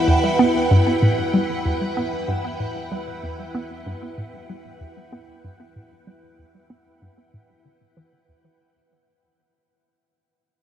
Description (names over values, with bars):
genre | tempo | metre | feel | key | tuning
ambient, sequencer-driven space music | 95 BPM | 4/4 | straight | E minor | A4 = 440 Hz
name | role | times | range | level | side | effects
string machine, full ensemble | sustained chords | 0.0-8.6 s | E4 to G5 | -23 LUFS | equal | phaser, ensemble chorus
analog drone | bass | 0.0-8.6 s | E2 | -42 LUFS | equal | none
hollow square pluck | riff | 0.1-8.5 s | E2 to B3 | -21 LUFS | equal | chorus, phaser, tape echo
room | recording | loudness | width
wet huge ambient reverb, RT60 8.5 s | in a vast, echoing space, cassette tape | -19 LUFS | side -10 dB against mid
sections
0.0-8.6 A section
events
fade-out 0.0-8.6; filter sweep on synth arpeggio sound 0.0-8.6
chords
0.0 Em